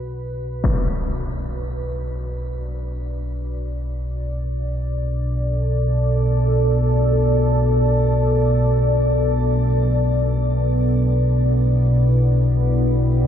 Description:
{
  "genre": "dark ambient drone",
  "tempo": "free time",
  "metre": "none",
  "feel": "none",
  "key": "B minor",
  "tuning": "A4 = 439 Hz",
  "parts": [
    { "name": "deep dark ambient pad", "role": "sustained chords", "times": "0.0-13.3 s", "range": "B3 to G5", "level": "-24 LUFS", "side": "left 1 dB", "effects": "chorus, built-in reverb, shimmer reverb" },
    { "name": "deep rumbling drone", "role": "drone", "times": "0.0-13.3 s", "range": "B1 to B2", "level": "-19 LUFS", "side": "equal", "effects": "built-in reverb" },
    { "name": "impact", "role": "percussion", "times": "0.6-0.8 s", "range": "none", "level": "-24 LUFS", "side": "left 1 dB", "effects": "low-pass filter on sfx" }
  ],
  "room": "light reverb",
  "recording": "none",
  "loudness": "-17 LUFS",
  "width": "side -9 dB against mid",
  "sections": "0.0-13.3 A section",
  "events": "fade-in on ambient pad 0.0-13.3",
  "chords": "0.0 Bm; 10.4 Em/B",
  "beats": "free time"
}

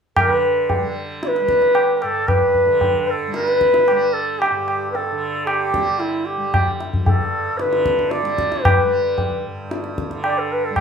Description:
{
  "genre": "indian classical, Hindustani",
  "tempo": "113 BPM",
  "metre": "4/4",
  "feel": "straight",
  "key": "unclear",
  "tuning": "A4 = 440 Hz",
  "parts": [
    { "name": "bright reedy bansuri", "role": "melody", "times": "0.2-10.8 s", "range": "E4 to D5", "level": "-18 LUFS", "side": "equal", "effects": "none" },
    { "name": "tanpura", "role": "drone", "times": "0.2-10.8 s", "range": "G2 to G3", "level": "-29 LUFS", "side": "right 1 dB", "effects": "none" },
    { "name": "tabla", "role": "percussion", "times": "0.2-10.8 s", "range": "none", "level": "-21 LUFS", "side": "equal", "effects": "none" }
  ],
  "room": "wet studio ambience, RT60 0.5 s",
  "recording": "band playing live in one room",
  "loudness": "-16 LUFS",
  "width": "side -6 dB against mid",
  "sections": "0.2-10.8 A section",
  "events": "none",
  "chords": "none",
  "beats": "| 0.16 0.69 1.23 1.76 | 2.29 2.82 3.35 3.88 | 4.41 4.94 5.47 6.00 | 6.53 7.06 7.59 8.12 | 8.65 9.18 9.71 10.24 | 10.77"
}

